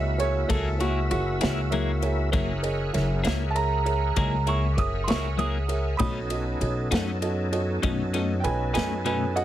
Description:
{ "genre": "slow blues", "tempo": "65 BPM (dotted quarters)", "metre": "12/8", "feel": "straight", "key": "F# mixolydian", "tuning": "A4 = 437 Hz", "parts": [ { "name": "bright upright piano", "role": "second line", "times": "0.0-9.4 s", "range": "F#4 to D#6", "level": "-30 LUFS", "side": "right 4 dB", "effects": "plate reverb" }, { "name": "warm baby grand piano", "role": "accompaniment", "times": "0.0-9.4 s", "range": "F#4 to F#5", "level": "-32 LUFS", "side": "right 4 dB", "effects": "plate reverb" }, { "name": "overdriven tonewheel organ", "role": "sustained chords", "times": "0.0-9.4 s", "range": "A#3 to F#5", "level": "-33 LUFS", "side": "equal", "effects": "chorus vibrato, slow rotary speaker" }, { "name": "upright bass", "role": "bass", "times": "0.0-9.4 s", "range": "F#1 to F#2", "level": "-27 LUFS", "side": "left 1 dB", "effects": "none" }, { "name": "natural country drum kit", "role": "drums", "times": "0.2-9.4 s", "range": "kick drum, ride cymbal, snare drum", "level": "-31 LUFS", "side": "equal", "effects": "none" }, { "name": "clean electric guitar", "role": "accompaniment", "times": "0.5-9.2 s", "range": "B2 to G#4", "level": "-30 LUFS", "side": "left 6 dB", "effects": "harmonic tremolo" } ], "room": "light reverb", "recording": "heavily compressed radio sound", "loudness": "-23 LUFS", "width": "side -12 dB against mid", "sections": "0.0-9.4 A section", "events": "upright piano solo 0.0-9.4", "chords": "0.0 F#9; 6.0 B9", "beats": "0.50 1.42 | 2.33 3.25 4.17 5.08 | 6.00 6.92 7.84 8.76" }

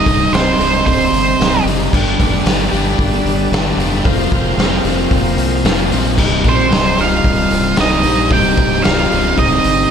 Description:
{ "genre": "classic rock", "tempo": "113 BPM", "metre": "4/4", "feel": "straight", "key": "C minor", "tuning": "A4 = 440 Hz", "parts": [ { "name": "octave-fuzz lead guitar", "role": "melody", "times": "0.0-1.6, 6.5-9.9 s", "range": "C5 to G5", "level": "-16 LUFS", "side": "right 3 dB", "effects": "distortion" }, { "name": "fuzz lead guitar", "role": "second line", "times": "0.0-1.6, 6.5-9.9 s", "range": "C4 to G4", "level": "-22 LUFS", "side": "right 5 dB", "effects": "distortion" }, { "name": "overdriven tonewheel organ", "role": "sustained chords", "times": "0.0-9.9 s", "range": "C4 to Eb5", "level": "-25 LUFS", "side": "left 2 dB", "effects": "chorus vibrato, slow rotary speaker" }, { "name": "crunchy overdriven guitar", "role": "riff", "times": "0.0-9.9 s", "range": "C2 to G4", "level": "-17 LUFS", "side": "equal", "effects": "none" }, { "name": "growling fingered electric bass", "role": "bass", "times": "0.0-9.9 s", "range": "C1 to C2", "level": "-20 LUFS", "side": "equal", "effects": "overdrive" }, { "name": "raw garage drum kit", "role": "drums", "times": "0.1-9.8 s", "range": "crash cymbal, hi-hat, kick drum, snare drum", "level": "-17 LUFS", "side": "left 1 dB", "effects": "none" } ], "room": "light reverb", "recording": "none", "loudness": "-12 LUFS", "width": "side -7 dB against mid", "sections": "0.0-9.9 A section", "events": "none", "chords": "0.0 Cm; 1.9 G; 4.1 Fsus4; 6.2 Cm", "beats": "0.35 0.88 1.41 | 1.94 2.48 3.01 3.54 | 4.07 4.60 5.13 5.67 | 6.20 6.73 7.26 7.79 | 8.32 8.85 9.38" }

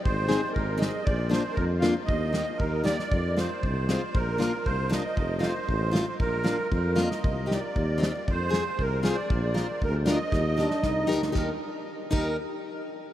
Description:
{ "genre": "alpine folk, alpine dance band", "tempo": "117 BPM", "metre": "2/4", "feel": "rubato", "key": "Eb major", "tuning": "A4 = 440 Hz", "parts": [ { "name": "musette accordion", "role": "melody", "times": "0.0-12.4 s", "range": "Bb4 to F5", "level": "-30 LUFS", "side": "right 2 dB", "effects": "none" }, { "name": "mellow tuba", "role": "bass", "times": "0.1-12.4 s", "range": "F1 to F2", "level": "-29 LUFS", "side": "equal", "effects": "none" }, { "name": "loose indie drum kit", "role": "drums", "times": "0.1-12.2 s", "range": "crash cymbal, hi-hat, kick drum, snare drum", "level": "-30 LUFS", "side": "equal", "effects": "none" }, { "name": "picked plugged-in steel-string acoustic guitar", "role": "accompaniment", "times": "0.3-12.4 s", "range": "Ab3 to Bb4", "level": "-31 LUFS", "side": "left 2 dB", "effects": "none" }, { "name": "clear euphonium", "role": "second line", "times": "10.6-12.4 s", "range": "D4 to G4", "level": "-33 LUFS", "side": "right 2 dB", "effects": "none" } ], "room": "wet huge ambient reverb, RT60 7.9 s", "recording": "in a vast, echoing space", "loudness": "-24 LUFS", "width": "side -12 dB against mid", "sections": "0.0-11.4 A section; 11.4-12.4 B section", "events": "drum fill 10.3-11.4", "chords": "0.0 Ab; 1.1 Bb; 2.1 Eb; 3.1 Fm; 4.1 Bb; 5.2 F; 6.2 Bb; 7.2 Cm; 8.3 Fm; 9.3 Bb; 10.3 Eb", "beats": "| 0.04 0.54 | 1.05 1.56 | 2.08 2.59 | 3.11 3.63 | 4.15 4.66 | 5.17 5.68 | 6.19 6.71 | 7.23 7.75 | 8.27 8.78 | 9.29 9.80 | 10.31 10.83 | 11.35 11.87" }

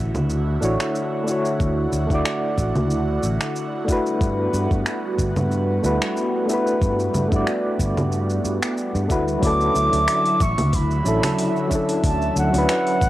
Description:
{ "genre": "sunset chillout", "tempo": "92 BPM", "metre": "4/4", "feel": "swing 54% on 16ths", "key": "D major", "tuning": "A4 = 439 Hz", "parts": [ { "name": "airy breathy pad", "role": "sustained chords", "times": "0.0-13.1 s", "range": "D3 to E5", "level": "-27 LUFS", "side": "right 1 dB", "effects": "chorus, phaser, cassette tape" }, { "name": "sustaining fretless electric bass", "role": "bass", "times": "0.0-13.1 s", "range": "G1 to G2", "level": "-23 LUFS", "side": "equal", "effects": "none" }, { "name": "deep house drum kit", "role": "drums", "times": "0.1-13.1 s", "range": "congas, finger snaps, hi-hat, shaker", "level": "-27 LUFS", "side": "equal", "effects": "overdrive, studio ambience, cassette tape" }, { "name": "soft electric-piano-like synth keys", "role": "accompaniment", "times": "0.6-13.1 s", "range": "F#3 to D5", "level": "-23 LUFS", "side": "equal", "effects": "chorus, tremolo, auto-pan, low-pass filter, cassette tape, tape echo" }, { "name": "electronic kick drum", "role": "drums", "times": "1.6-13.1 s", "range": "none", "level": "-23 LUFS", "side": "equal", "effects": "overdrive, studio ambience, cassette tape" }, { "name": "mellow concert flute", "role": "melody", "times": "9.4-13.1 s", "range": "F#5 to D6", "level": "-22 LUFS", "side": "equal", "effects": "cassette tape, tape echo" } ], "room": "light reverb", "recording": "home recording on cassette", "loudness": "-18 LUFS", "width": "side -15 dB against mid", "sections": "0.0-9.4 A section; 9.4-13.1 B section", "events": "filter sweep on synth keys 0.0-9.4", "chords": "0.0 Dmaj9; 3.9 Gmaj13; 9.4 Dmaj9", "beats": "0.30 0.95 | 1.60 2.25 2.91 3.56 | 4.21 4.86 5.51 6.17 | 6.82 7.47 8.12 8.78 | 9.43 10.08 10.73 11.38 | 12.04 12.69" }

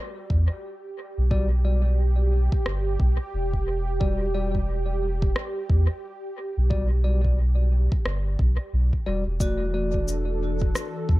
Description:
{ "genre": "ambient dub", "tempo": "89 BPM", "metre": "4/4", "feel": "swing 60% on 16ths", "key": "E minor", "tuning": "A4 = 440 Hz", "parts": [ { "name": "warm analog pad", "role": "sustained chords", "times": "0.0-11.2 s", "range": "E3 to A4", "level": "-33 LUFS", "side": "right 2 dB", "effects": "chorus" }, { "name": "soft dub sub bass", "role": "bass", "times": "0.3-11.2 s", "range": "E1 to E2", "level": "-22 LUFS", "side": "equal", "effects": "none" }, { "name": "electronic kick drum", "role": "drums", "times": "0.3-11.2 s", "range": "none", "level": "-26 LUFS", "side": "equal", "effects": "none" }, { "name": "bell-like tine electric piano", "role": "stabs", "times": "1.3-10.0 s", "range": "G3 to D5", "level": "-34 LUFS", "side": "left 3 dB", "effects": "dub echo" }, { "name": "electronic rim click and cabasa", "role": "drums", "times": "2.7-10.9 s", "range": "none", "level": "-34 LUFS", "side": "left 1 dB", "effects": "dub echo" }, { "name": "vibraphone with medium hard mallets", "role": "arpeggios", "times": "9.4-11.2 s", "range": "F#4", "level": "-32 LUFS", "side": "right 2 dB", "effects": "analog delay" } ], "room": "little or no reverb", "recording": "echo-heavy mix", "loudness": "-22 LUFS", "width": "side -18 dB against mid", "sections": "0.0-11.2 A section", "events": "none", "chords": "0.0 Em9; 9.4 D/E", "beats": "0.64 | 1.31 1.99 2.66 3.34 | 4.01 4.69 5.36 6.03 | 6.71 7.38 8.06 8.73 | 9.40 10.08 10.75" }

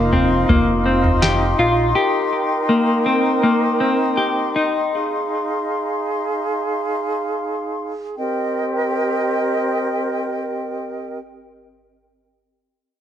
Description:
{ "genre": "dream pop", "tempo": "70-82 BPM", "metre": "4/4", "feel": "straight", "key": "C minor", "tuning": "A4 = 440 Hz", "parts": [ { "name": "breathy small flute group", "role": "sustained chords", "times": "0.0-11.2 s", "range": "C4 to C6", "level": "-20 LUFS", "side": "right 1 dB", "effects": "none" }, { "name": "semi-hollow electric guitar", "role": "arpeggios", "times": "0.0-4.9 s", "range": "Bb3 to G4", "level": "-18 LUFS", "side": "left 2 dB", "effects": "wide subtle chorus, ping-pong delay" }, { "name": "chorused synth bass", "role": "bass", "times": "0.0-1.9 s", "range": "F1 to Bb1", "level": "-21 LUFS", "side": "equal", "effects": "none" }, { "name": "soft vintage rhythm box", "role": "drums", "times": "0.1-1.4 s", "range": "kick drum, snare drum, toms", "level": "-20 LUFS", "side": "right 1 dB", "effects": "none" } ], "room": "moderate plate reverb, RT60 2.1 s", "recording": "worn, warbling old tape, cassette tape, warbly pitch drift", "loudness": "-17 LUFS", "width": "side -10 dB against mid", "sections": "0.0-8.2 A section; 8.2-11.6 B section", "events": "slowing down 2.0-8.2", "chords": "0.0 F5; 2.0 Cm7; 4.9 Fm7; 8.2 Cm7", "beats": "0.49 1.22 | 1.95 2.69 3.43 4.18 | 4.94 5.72 6.51 7.33 | 8.18 9.04 9.90 10.76" }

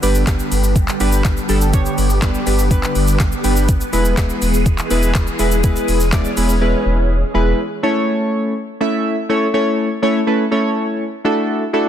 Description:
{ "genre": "dance-pop", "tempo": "123 BPM", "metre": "4/4", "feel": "straight", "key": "A major", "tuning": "A4 = 440 Hz", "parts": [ { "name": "warm analog keys", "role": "accompaniment", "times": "0.0-11.9 s", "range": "G3 to E5", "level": "-18 LUFS", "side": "equal", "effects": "chorus" }, { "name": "soft string machine", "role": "sustained chords", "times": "0.0-7.6 s", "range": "D3 to G#4", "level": "-22 LUFS", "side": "left 1 dB", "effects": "phaser, ensemble chorus, sidechain pumping" }, { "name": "saturated sub bass", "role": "bass", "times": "0.0-7.5 s", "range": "E1 to G1", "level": "-18 LUFS", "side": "equal", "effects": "sidechain pumping" }, { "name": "smooth R&B drum kit", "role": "drums", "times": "0.0-6.6 s", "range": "handclaps, hi-hat, kick drum, shaker, snare drum", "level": "-19 LUFS", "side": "equal", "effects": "none" } ], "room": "light reverb, digital ambience", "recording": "dense, heavily limited modern master", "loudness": "-14 LUFS", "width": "side -10 dB against mid", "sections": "0.0-7.6 A section; 7.6-11.9 A section", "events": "drums muted 6.6-7.6", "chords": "0.0 G; 3.7 E; 7.6 A; 11.2 Dadd9", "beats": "0.27 0.76 1.25 | 1.74 2.22 2.71 3.20 | 3.69 4.17 4.66 5.15 | 5.64 6.13 6.61 7.10 | 7.59 8.08 8.56 9.05 | 9.54 10.03 10.52 11.00 | 11.49" }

